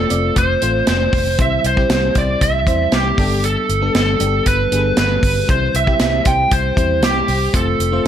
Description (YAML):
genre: 1980s-style pop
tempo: 117 BPM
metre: 4/4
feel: straight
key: unclear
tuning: A4 = 440 Hz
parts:
  - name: lead guitar through a small cranked amp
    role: melody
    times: 0.0-8.1 s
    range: G4 to G5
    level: -18 LUFS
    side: right 1 dB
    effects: overdrive
  - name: FM electric piano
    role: accompaniment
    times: 0.0-8.1 s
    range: G3 to D5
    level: -22 LUFS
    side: left 2 dB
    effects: chorus
  - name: vintage muted fingered electric bass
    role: bass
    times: 0.0-8.1 s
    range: F1 to E2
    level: -20 LUFS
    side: equal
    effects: none
  - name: modern studio drum kit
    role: drums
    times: 0.1-7.9 s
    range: hi-hat, kick drum, snare drum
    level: -19 LUFS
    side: equal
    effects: gated reverb
room: light reverb, small room ambience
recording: none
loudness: -14 LUFS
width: side -10 dB against mid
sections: 0.0-8.1 A section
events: none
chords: 0.0 F; 1.4 C; 3.2 Gadd9; 5.5 C; 7.5 F